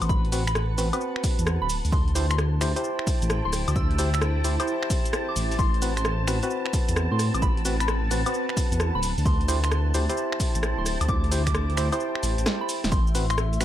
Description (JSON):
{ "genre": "UK garage, two-step garage", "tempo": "131 BPM", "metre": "4/4", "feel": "swing 66% on 16ths", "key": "unclear", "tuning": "A4 = 440 Hz", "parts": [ { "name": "soft string machine", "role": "sustained chords", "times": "0.0-13.6 s", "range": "E5 to A5", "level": "-36 LUFS", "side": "left 1 dB", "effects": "phaser, ensemble chorus, sidechain pumping" }, { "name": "percussive organ stab", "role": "stabs", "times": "0.0-13.6 s", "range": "C4 to C5", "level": "-30 LUFS", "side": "equal", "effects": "chorus, ping-pong delay" }, { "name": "dark detuned saw bass", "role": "bass", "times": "0.0-13.6 s", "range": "D1 to A2", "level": "-25 LUFS", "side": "equal", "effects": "none" }, { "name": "punchy analog drum machine", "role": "drums", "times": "0.0-13.6 s", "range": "cabasa, finger snaps, hi-hat, rim click, snare drum, woodblock", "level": "-30 LUFS", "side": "equal", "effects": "none" }, { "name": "granular cloud pad", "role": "texture", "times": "0.0-12.9 s", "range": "C4 to G5", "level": "-36 LUFS", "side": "equal", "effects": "built-in reverb, sidechain pumping" }, { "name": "soft synth bell", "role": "melody", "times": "0.1-13.5 s", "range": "B5 to E6", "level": "-33 LUFS", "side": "equal", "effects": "chorus, phaser, ping-pong delay" }, { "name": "electronic kick drum", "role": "drums", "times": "0.1-13.0 s", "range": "none", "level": "-25 LUFS", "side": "equal", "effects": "none" } ], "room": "light reverb, digital ambience", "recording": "none", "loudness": "-22 LUFS", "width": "side -12 dB against mid", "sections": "0.0-12.9 A section", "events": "drop 0.0-12.9; break 12.0-12.9; drum fill 12.5-12.9", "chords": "0.0 Am69; 1.7 D9sus4; 5.6 Am69; 9.0 D9sus4; 12.9 Am69" }